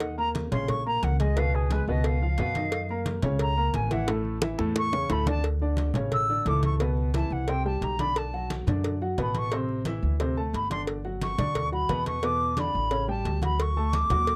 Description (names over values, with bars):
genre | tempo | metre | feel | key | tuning
Afro-Cuban jazz | 177 BPM | 4/4 | straight | D major from 5.4 s | A4 = 440 Hz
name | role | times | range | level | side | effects
silver concert flute | melody | 0.0-14.4 s | G#4 to E6 | -31 LUFS | equal | none
warm baby grand piano | accompaniment | 0.0-14.4 s | A2 to A#5 | -33 LUFS | equal | none
upright bass | bass | 0.0-14.4 s | G1 to F#2 | -31 LUFS | equal | none
congas | percussion | 0.0-14.4 s | none | -37 LUFS | equal | none
cowbell and bongos | percussion | 0.0-14.4 s | none | -37 LUFS | equal | none
room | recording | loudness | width
little or no reverb | dry, close 1970s-style studio recording | -27 LUFS | mono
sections
0.0-5.4 A section; 5.4-14.4 A section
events
flute solo 0.0-14.4; drum fill 4.1-5.4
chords
0.0 D#5; 1.4 C#7; 2.7 F#6; 4.1 A; 5.4 D5; 6.8 A69; 7.5 Csus2; 8.2 Bm7; 9.5 Am; 10.2 D5; 10.9 Gmaj7; 12.2 E5; 12.9 A7; 13.6 Dmaj7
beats
| 0.01 0.35 0.69 1.03 | 1.37 1.71 2.05 2.39 | 2.73 3.07 3.41 3.75 | 4.09 4.43 4.76 5.11 | 5.45 5.78 6.12 6.46 | 6.80 7.14 7.48 7.82 | 8.16 8.50 8.84 9.18 | 9.52 9.86 10.20 10.54 | 10.88 11.22 11.56 11.90 | 12.24 12.57 12.91 13.25 | 13.59 13.93 14.27